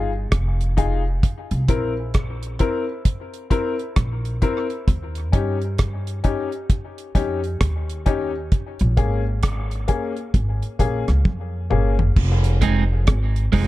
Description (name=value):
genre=dub reggae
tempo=66 BPM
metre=4/4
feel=swing 62% on 16ths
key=F minor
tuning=A4 = 440 Hz
part: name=warm upright piano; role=stabs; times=0.0-11.9 s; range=Bb3 to Bb4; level=-26 LUFS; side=left 5 dB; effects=tape echo
part: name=upright bass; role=bass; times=0.0-13.7 s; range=F1 to G2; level=-22 LUFS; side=equal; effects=none
part: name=deep reggae drum kit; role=drums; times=0.3-13.7 s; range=crash cymbal, hi-hat, kick drum, rim click, toms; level=-20 LUFS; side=equal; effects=none
part: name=electric guitar at the edge of break-up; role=accompaniment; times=12.6-13.7 s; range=Ab3 to Ab4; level=-23 LUFS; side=right 6 dB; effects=tape echo
room=light reverb, studio ambience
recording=dark, warm production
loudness=-19 LUFS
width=side -16 dB against mid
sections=0.0-12.2 A section; 12.2-13.7 B section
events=break 0.0-12.2; drum fill 11.3-12.2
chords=0.0 Fm7; 1.2 C7; 4.9 Eb7; 8.5 Bbm7; 12.2 Fm7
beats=0.32 | 1.23 2.14 3.05 3.96 | 4.88 5.79 6.70 7.61 | 8.52 9.43 10.34 11.25 | 12.16 13.08